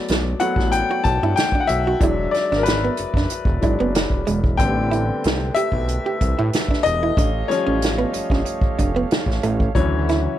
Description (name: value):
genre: R&B, neo-soul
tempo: 93 BPM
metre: 4/4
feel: swing 53% on 16ths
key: unclear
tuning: A4 = 440 Hz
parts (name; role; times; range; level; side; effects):
- clear grand piano; accompaniment; 0.0-10.4 s; D3 to A5; -22 LUFS; left 4 dB; none
- fat analog bass; bass; 0.1-10.3 s; E1 to A2; -23 LUFS; equal; none
- unplugged drum kit; drums; 0.1-10.2 s; hi-hat, kick drum, snare drum; -22 LUFS; equal; none
- archtop guitar, miked and amplified; second line; 0.4-10.2 s; G#3 to G4; -24 LUFS; right 5 dB; none
- pipe organ, principal; sustained chords; 4.6-10.4 s; C#3 to E#5; -29 LUFS; right 5 dB; none
room: light reverb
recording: none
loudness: -17 LUFS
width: side -12 dB against mid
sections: 0.0-10.4 A section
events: grand piano solo 0.0-10.4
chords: 0.0 Gmaj7; 2.0 E7; 4.6 Am11; 7.2 Aaug7; 9.8 Dmaj9